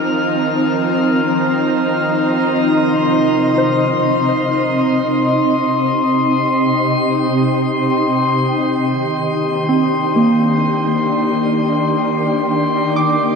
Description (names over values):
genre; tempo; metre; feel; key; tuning
ambient; 64 BPM; 3/4; straight; unclear; A4 = 441 Hz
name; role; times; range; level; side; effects
shimmering ambient pad; sustained chords; 0.0-13.4 s; C3 to Bb4; -15 LUFS; right 1 dB; chorus, built-in reverb
soft round pluck; arpeggios; 0.0-13.4 s; Bb3 to D6; -22 LUFS; right 1 dB; lush chorus, ping-pong delay
bowed-like drone; drone; 0.0-2.7 s; Eb3 to Eb4; -27 LUFS; left 1 dB; built-in reverb
glass harmonica; texture; 0.0-13.4 s; C6 to F6; -20 LUFS; left 4 dB; none
room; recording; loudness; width
wet shimmer reverb, RT60 7.3 s; none; -14 LUFS; side -5 dB against mid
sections
0.0-2.6 A section; 2.6-13.4 B section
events
filter sweep on ambient pad 2.6-13.4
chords
0.0 F7sus4; 2.6 Cm; 8.3 Ebmaj7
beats
0.77 1.71 | 2.64 3.58 4.52 | 5.46 6.39 7.33 | 8.27 9.21 10.14 | 11.08 12.02 12.96